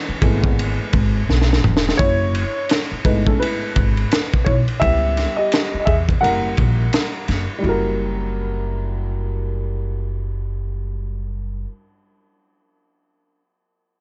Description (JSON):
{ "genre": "hip hop, jazz-hop", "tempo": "85 BPM", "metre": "4/4", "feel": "swing 61% on 16ths", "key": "unclear", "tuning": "A4 = 440 Hz", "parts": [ { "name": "dark upright piano", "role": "accompaniment", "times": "0.0-11.7 s", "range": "E3 to F#5", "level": "-25 LUFS", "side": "equal", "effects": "low-pass filter" }, { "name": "upright bass", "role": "bass", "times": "0.1-11.6 s", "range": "E1 to E2", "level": "-23 LUFS", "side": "equal", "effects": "none" }, { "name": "crunchy breakbeat drum kit", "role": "drums", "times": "0.2-7.5 s", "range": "hi-hat, kick drum, ride cymbal, snare drum, toms", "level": "-22 LUFS", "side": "equal", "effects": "none" } ], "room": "little or no reverb", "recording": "nothing above 7.9 kHz", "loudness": "-20 LUFS", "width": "mono", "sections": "0.0-2.0 A section; 2.0-7.6 B section; 7.6-10.5 C section", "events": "upright piano solo 0.0-2.0, 2.0-7.6; drum fill 1.3-2.0", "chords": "0.0 F#m11 (rootless); 2.0 F#m11; 4.8 C#m7b5; 6.2 F#7b9" }